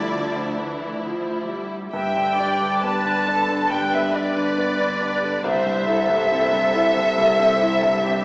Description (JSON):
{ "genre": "cinematic, emotional film score for orchestra", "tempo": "69 BPM", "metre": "4/4", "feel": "rubato", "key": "unclear", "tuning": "A4 = 440 Hz", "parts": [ { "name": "rich studio violin section", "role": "melody", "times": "0.0-8.2 s", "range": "E4 to A5", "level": "-26 LUFS", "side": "left 1 dB", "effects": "none" }, { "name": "bright clarinet", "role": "second line", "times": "0.0-1.0 s", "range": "D4", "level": "-38 LUFS", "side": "equal", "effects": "none" }, { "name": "mellow silver concert flute", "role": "second line", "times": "0.0-8.2 s", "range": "D5 to A5", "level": "-22 LUFS", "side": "equal", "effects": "none" }, { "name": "rich studio violin section", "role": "second line", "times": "0.0-8.2 s", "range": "G3 to D5", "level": "-31 LUFS", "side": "equal", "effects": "none" }, { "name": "bright grand piano", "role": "accompaniment", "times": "0.0-8.2 s", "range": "C2 to A4", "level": "-25 LUFS", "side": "equal", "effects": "none" }, { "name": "warm studio viola section", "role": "accompaniment", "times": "0.0-8.2 s", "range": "E3 to E5", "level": "-26 LUFS", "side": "equal", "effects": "none" }, { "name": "mellow French horn section", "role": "sustained chords", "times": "0.0-1.0 s", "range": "none", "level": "barely audible", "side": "none", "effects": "none" }, { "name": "rich studio cello section", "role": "bass", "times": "0.0-8.2 s", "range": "C2 to D3", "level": "-33 LUFS", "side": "equal", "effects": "none" }, { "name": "warm studio double bass section", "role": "bass", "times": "0.0-1.7 s", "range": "D2", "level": "-34 LUFS", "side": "equal", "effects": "none" } ], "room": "wet scoring stage reverb, RT60 1.8 s", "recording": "heard from further back in the room, small speaker sound", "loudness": "-18 LUFS", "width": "side -24 dB against mid", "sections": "0.0-1.9 A section; 1.9-8.2 A section", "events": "none", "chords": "0.0 Dmadd9; 1.9 Gadd9; 5.4 C" }